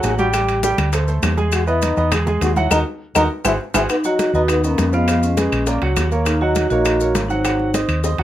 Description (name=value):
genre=Afro-Cuban jazz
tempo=202 BPM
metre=4/4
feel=straight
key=unclear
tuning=A4 = 438 Hz
part: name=trombone with cup mute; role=second line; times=0.0-7.8 s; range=Ab3 to G#4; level=-22 LUFS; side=left 3 dB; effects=none
part: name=warm upright piano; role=accompaniment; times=0.0-8.2 s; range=E#3 to G#5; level=-22 LUFS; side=right 3 dB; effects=none
part: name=hollow-body short-scale fingered electric bass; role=bass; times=0.0-8.2 s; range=G#1 to E#2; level=-20 LUFS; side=equal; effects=none
part: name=bongos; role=percussion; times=0.0-8.1 s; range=none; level=-30 LUFS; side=left 5 dB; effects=none
part: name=congas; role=percussion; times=0.0-8.2 s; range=none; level=-28 LUFS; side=left 3 dB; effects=none
part: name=maracas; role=percussion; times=0.0-8.2 s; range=none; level=-32 LUFS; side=left 7 dB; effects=none
part: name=timbales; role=percussion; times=0.0-8.2 s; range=none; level=-28 LUFS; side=right 5 dB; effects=none
part: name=claves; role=percussion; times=0.3-8.0 s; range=none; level=-26 LUFS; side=left 7 dB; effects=none
part: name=vibraphone with medium mallets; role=melody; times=3.9-7.8 s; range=B3 to F#4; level=-20 LUFS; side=right 1 dB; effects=none
room=light reverb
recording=none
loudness=-15 LUFS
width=side -12 dB against mid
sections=0.0-3.9 A section; 3.9-8.2 B section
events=trombone solo 0.0-3.9; band accent 2.7-3.9; drum fill 3.0-3.9, 8.0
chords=0.3 A7sus4; 0.9 Dsus2; 1.5 Emaj9; 2.7 D#m; 3.3 G#aug7; 3.9 Bmaj9#11; 5.1 Fdim; 5.7 A#aug; 6.3 D#m7; 7.4 G#7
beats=0.04 | 0.34 0.63 0.93 1.23 | 1.52 1.82 2.12 2.41 | 2.71 3.01 3.30 3.60 | 3.90 4.19 4.49 4.78 | 5.08 5.38 5.67 5.97 | 6.26 6.56 6.86 7.15 | 7.45 7.74 8.04